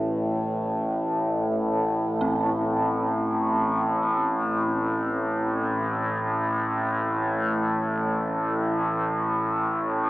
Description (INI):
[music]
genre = dark ambient drone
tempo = free time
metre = none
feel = none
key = A minor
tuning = A4 = 442 Hz
[part]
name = dark detuned synth bell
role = arpeggios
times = 0.0-10.1 s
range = C4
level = -35 LUFS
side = equal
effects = chorus, tape echo
[part]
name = overtone-sweeping drone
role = drone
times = 0.0-10.1 s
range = A1 to A2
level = -23 LUFS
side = equal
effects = chorus, built-in reverb, phaser
[sound]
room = wet cathedral reverb, RT60 6.2 s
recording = AM radio sound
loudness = -23 LUFS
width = side -17 dB against mid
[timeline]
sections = 0.0-10.1 A section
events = none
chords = 0.0 Am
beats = free time